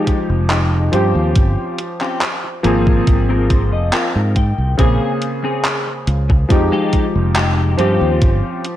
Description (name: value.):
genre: vaporwave.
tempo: 70 BPM.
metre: 4/4.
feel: straight.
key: Bb dorian.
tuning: A4 = 438 Hz.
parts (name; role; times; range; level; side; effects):
warm electric grand piano; accompaniment; 0.0-8.8 s; Db3 to C5; -19 LUFS; equal; analog chorus, analog delay.
clean electric guitar; riff; 0.0-8.6 s; Ab3 to G5; -23 LUFS; left 3 dB; ensemble chorus, low-pass filter, analog delay.
electronic kick drum; drums; 0.1-8.4 s; none; -15 LUFS; equal; studio reverb.
gated 80s digital drum machine; drums; 0.1-8.8 s; handclaps, hi-hat; -21 LUFS; equal; gated reverb, studio reverb.
fingered electric bass; bass; 0.3-8.4 s; F1 to Ab2; -16 LUFS; equal; none.
room: light reverb, digital ambience.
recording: cassette tape.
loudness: -14 LUFS.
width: side -12 dB against mid.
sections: 0.0-8.8 A section.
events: filter sweep on clean electric guitar 0.0-8.8; clean electric guitar fill 3.1-4.8.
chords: 0.0 Fm9; 0.9 Eb13/G (rootless); 2.6 Ab69; 4.8 Bbm9; 6.5 Fm9; 7.8 Eb13.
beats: 0.51 | 1.36 2.22 3.08 3.93 | 4.79 5.65 6.50 7.36 | 8.22.